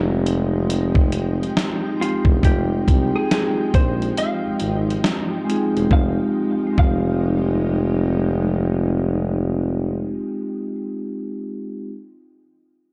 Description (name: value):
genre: lo-fi hip hop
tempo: 69 BPM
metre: 4/4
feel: swing 63% on 16ths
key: F minor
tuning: A4 = 440 Hz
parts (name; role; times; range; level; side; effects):
- vibraphone with soft mallets; accompaniment; 0.0-11.9 s; Ab3 to G5; -25 LUFS; equal; low-pass filter
- granular cloud pad; sustained chords; 0.1-9.9 s; F3 to G5; -34 LUFS; equal; built-in reverb, low-pass filter
- breathy tuba; bass; 0.0-10.2 s; E1 to C2; -25 LUFS; equal; none
- dusty soul sampler-style drum kit; drums; 0.3-7.1 s; hi-hat, kick drum, snare drum; -21 LUFS; equal; none
- vintage hollow-body jazz guitar; melody; 2.0-10.8 s; F4 to F5; -30 LUFS; equal; low-pass filter, tape echo
room: moderate spring reverb, RT60 2.7 s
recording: dark, warm production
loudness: -20 LUFS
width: mono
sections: 0.0-5.9 A section; 5.9-9.4 B section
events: break 4.2-5.9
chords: 0.0 Fm9